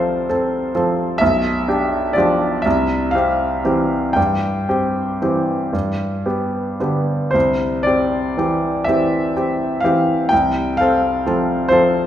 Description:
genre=classical, romantic nocturne for solo piano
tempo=36-45 BPM (dotted quarters)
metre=6/8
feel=rubato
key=C major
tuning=A4 = 440 Hz
part: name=clear grand piano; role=solo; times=0.0-12.1 s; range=B1 to G5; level=-16 LUFS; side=equal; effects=none
room=wet recital hall reverb, RT60 1.7 s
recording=recorded in a church or concert hall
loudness=-16 LUFS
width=side -11 dB against mid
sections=0.0-12.1 A section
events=none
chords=0.0 F/C; 1.2 G7/B; 2.7 C; 4.2 C/G; 5.7 G; 7.3 C; 10.3 F/C

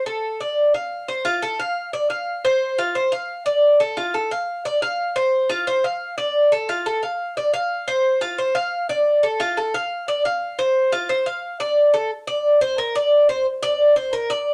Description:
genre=latin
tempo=177 BPM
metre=4/4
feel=straight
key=F major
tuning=A4 = 440 Hz
part: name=Cuban tres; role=solo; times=0.0-14.5 s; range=F4 to F5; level=-21 LUFS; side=equal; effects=none
room=light reverb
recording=none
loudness=-21 LUFS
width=mono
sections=0.0-1.2 A section; 1.2-12.1 B section; 12.1-14.5 C section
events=Cuban tres solo 12.1-14.5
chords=none

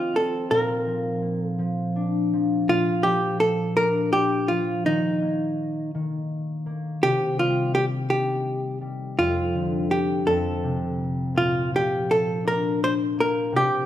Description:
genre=children's music, lullaby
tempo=55 BPM (dotted quarters)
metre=6/8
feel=straight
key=Bb major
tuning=A4 = 440 Hz
part: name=hollow-body jazz guitar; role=melody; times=0.0-13.9 s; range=Eb4 to C5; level=-22 LUFS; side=equal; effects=none
part: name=concert harp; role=accompaniment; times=0.0-13.9 s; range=F2 to Eb4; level=-25 LUFS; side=left 2 dB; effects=none
room=wet recital hall reverb, RT60 1.6 s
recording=minimal, uncompressed stereo recording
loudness=-21 LUFS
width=side -12 dB against mid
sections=0.0-2.7 A section; 2.7-13.9 B section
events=none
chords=0.5 Bb; 4.9 Eb5; 7.0 Cm; 9.2 Dmadd11/F; 10.2 F; 11.3 Bb

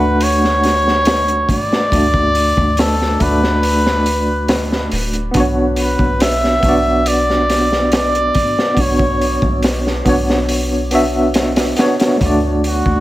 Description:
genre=trip hop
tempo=70 BPM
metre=4/4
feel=straight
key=B minor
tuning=A4 = 441 Hz
part: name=trumpet with cup mute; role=melody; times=0.0-13.0 s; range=F#4 to E5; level=-17 LUFS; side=equal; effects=dub echo
part: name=tine electric piano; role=accompaniment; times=0.0-13.0 s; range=A3 to F#5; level=-17 LUFS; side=equal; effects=medium tremolo, tape echo
part: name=soft 808-style bass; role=bass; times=0.0-13.0 s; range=D1 to D2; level=-20 LUFS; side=equal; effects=none
part: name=crunchy breakbeat drum kit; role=drums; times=0.2-13.0 s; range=hi-hat, kick drum, snare drum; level=-18 LUFS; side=equal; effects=none
room=light reverb, small room ambience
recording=none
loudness=-12 LUFS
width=side -16 dB against mid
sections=0.0-13.0 A section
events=none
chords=0.0 D; 5.3 Bmadd9; 12.2 D

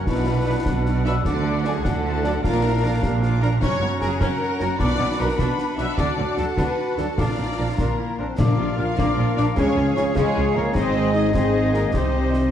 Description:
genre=cinematic, heroic adventure film score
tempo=101 BPM (dotted quarters)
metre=6/8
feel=straight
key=unclear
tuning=A4 = 440 Hz
part: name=rich symphonic violin section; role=melody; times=0.0-12.5 s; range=Db5 to D6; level=-35 LUFS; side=left 4 dB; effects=none
part: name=bright clarinet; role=second line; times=0.0-12.5 s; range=C#4 to Ab4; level=-33 LUFS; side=left 2 dB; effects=none
part: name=clear oboe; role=second line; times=0.0-12.5 s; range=Eb5 to F#5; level=-34 LUFS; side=right 1 dB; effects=none
part: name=mellow silver concert flute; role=second line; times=0.0-12.3 s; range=Ab5 to F6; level=-33 LUFS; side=left 3 dB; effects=none
part: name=warm symphonic violin section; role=second line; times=0.0-12.5 s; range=G#4 to F5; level=-30 LUFS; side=left 3 dB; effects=none
part: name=rich symphonic viola section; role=accompaniment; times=0.0-12.5 s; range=Ab3 to B4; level=-31 LUFS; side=equal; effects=none
part: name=mellow French horn section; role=sustained chords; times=0.0-12.5 s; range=Ab3 to G4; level=-27 LUFS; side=left 4 dB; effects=none
part: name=rich symphonic cello section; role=bass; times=0.1-12.5 s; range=F#2 to D3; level=-27 LUFS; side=right 2 dB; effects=none
part: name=rich symphonic double bass section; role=bass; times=0.1-12.5 s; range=F#1 to D2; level=-26 LUFS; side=right 2 dB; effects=none
part: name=concert snare drum, concert bass drum and clash cymbals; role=drums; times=0.1-12.5 s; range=none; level=-28 LUFS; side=left 1 dB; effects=none
part: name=warm trombone section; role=sustained chords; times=0.5-12.5 s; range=Eb3 to D4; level=-32 LUFS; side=right 4 dB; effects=none
part: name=bright trumpet section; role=stabs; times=0.5-12.5 s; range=A4 to Eb5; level=-32 LUFS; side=right 1 dB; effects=none
part: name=timpani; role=percussion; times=8.4-8.9 s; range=Bb2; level=-25 LUFS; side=left 2 dB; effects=none
room=wet scoring stage reverb, RT60 1.7 s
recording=dark, warm production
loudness=-19 LUFS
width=side -10 dB against mid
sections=0.0-8.4 A section; 8.4-12.5 B section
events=none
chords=0.1 Bm; 1.3 D; 2.4 A#; 3.6 F#; 4.8 Bm; 6.0 D; 7.2 A#; 8.4 Bb; 9.6 Db; 10.8 Ab; 11.9 Cm

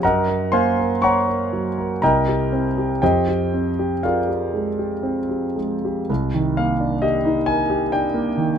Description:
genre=classical, impressionist solo piano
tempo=54-68 BPM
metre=3/4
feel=rubato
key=unclear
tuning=A4 = 443 Hz
part: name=clear concert grand piano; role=solo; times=0.0-8.6 s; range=C2 to Db6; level=-18 LUFS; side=equal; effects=none
room=light reverb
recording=close, detailed microphones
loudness=-18 LUFS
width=side -8 dB against mid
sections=0.0-6.1 A section; 6.1-8.6 B section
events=none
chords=0.0 Gbmaj7; 2.0 Cm7; 3.0 Fm9; 6.1 Cm9

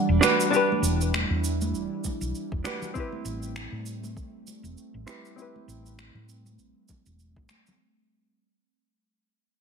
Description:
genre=sunset chillout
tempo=99 BPM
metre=4/4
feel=swing 56% on 16ths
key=unclear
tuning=A4 = 438 Hz
part: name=archtop guitar, miked and amplified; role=accompaniment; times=0.0-7.5 s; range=C4 to B4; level=-27 LUFS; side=moving between left 4 dB and right 3 dB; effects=auto-pan, low-pass filter, ping-pong delay
part: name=airy breathy pad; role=sustained chords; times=0.0-7.8 s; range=E3 to F#5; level=-32 LUFS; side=right 4 dB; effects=chorus
part: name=hollow-body short-scale fingered electric bass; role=bass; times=0.1-7.5 s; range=E1 to A2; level=-28 LUFS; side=equal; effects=none
part: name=electronic finger snaps and shaker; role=drums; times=0.2-7.8 s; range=none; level=-30 LUFS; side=equal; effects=none
part: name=congas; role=percussion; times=0.2-7.8 s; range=none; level=-37 LUFS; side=left 2 dB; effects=none
part: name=electronic kick drum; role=drums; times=2.0-7.5 s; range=none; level=-36 LUFS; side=equal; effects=none
room=light reverb, digital ambience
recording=none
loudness=-24 LUFS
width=side -6 dB against mid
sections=0.0-7.8 A section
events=fade-out 0.0-7.8; filter sweep on fingered electric bass 0.0-7.8; filter sweep on analog synth pad 0.0-7.8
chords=0.0 Em9; 3.0 Am9

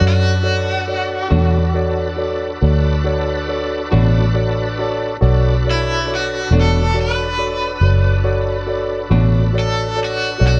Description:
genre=slow blues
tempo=46 BPM (dotted quarters)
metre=12/8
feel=straight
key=B minor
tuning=A4 = 444 Hz
part: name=raw garage guitar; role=melody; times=0.0-10.6 s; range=E4 to B4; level=-24 LUFS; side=equal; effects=overdrive, tremolo
part: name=barky tine electric piano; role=accompaniment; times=0.0-10.6 s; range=F#4 to A5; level=-24 LUFS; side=equal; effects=overdrive
part: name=bright tonewheel organ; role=sustained chords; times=0.0-10.6 s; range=D4 to F#5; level=-30 LUFS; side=equal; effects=slow rotary speaker, overdrive, chorus vibrato
part: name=vintage muted fingered electric bass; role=bass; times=0.0-10.6 s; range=E1 to F#2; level=-19 LUFS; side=equal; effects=none
part: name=electric guitar at the edge of break-up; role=accompaniment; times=1.3-9.4 s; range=B2 to F#4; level=-25 LUFS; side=equal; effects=tremolo
room=light reverb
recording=none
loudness=-17 LUFS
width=mono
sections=0.0-10.6 A section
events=overdriven electric guitar solo 0.0-10.6; tine electric piano fill 3.9-5.2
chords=0.0 Bm7

